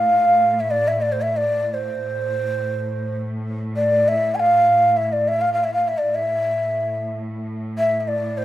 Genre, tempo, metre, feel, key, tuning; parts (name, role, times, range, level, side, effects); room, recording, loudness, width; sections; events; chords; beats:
Arabic maqam ensemble; free time; A minor; A4 = 440 Hz
breathy mellow ney; melody; 0.0-8.4 s; C5 to G#5; -18 LUFS; equal
warm studio cello section; drone; 0.0-8.4 s; A2; -28 LUFS; equal
moderate plate reverb, RT60 2.8 s; rough home demo mix; -18 LUFS; side -13 dB against mid
0.0-8.4 A section
free time